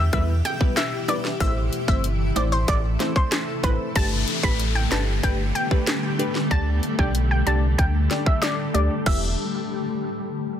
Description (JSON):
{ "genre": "dancehall", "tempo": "94 BPM", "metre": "4/4", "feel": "straight", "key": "E minor", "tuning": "A4 = 440 Hz", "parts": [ { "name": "analog pluck", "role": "melody", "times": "0.0-9.4 s", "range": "B4 to B5", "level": "-28 LUFS", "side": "left 1 dB", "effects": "chorus, low-pass filter, digital delay" }, { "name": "granular cloud pad", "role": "sustained chords", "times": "0.0-9.4 s", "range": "B2 to A4", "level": "-28 LUFS", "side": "left 2 dB", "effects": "built-in reverb, sidechain pumping, low-pass filter" }, { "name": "sub bass with octave", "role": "bass", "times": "0.0-9.4 s", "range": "E1 to E2", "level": "-23 LUFS", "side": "equal", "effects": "none" }, { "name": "wavetable chord stab", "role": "accompaniment", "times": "0.1-9.3 s", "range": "G3 to E5", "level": "-29 LUFS", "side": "equal", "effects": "low-pass filter" }, { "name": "island pop drum kit", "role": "drums", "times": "0.1-9.2 s", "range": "crash cymbal, handclaps, hi-hat, kick drum, rim click, snare drum", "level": "-24 LUFS", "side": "equal", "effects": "none" }, { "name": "bongos", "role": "percussion", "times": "0.1-3.8 s", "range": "none", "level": "-35 LUFS", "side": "right 3 dB", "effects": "none" }, { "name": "downlifter", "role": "sound effects", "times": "4.0-9.1 s", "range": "none", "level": "-32 LUFS", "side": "left 3 dB", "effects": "none" } ], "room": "little or no reverb", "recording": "dense, heavily limited modern master", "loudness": "-20 LUFS", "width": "side -10 dB against mid", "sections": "0.0-4.0 A section; 4.0-9.1 B section; 9.1-10.6 C section", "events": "filter sweep 4.0-9.1", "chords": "0.0 Em; 1.4 Am; 4.0 Gadd9; 6.5 Dsus4; 9.1 Em" }